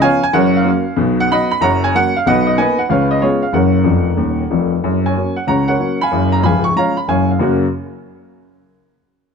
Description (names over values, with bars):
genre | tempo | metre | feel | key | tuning
jazz, stride piano | 187 BPM | 4/4 | swing 66% on 8ths | F# major | A4 = 441 Hz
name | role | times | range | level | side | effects
warm upright piano | solo | 0.0-7.6 s | C#1 to C#6 | -13 LUFS | equal | none
room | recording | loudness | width
light reverb | dark, warm production | -13 LUFS | side -6 dB against mid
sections
0.0-4.8 A section; 4.8-7.4 B section; 7.4-8.7 C section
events
upright piano fill 3.9-4.8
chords
0.3 F#; 1.0 B; 1.6 F#; 2.3 Bmaj7; 2.9 C#7; 3.5 F#; 6.1 C#; 7.4 F#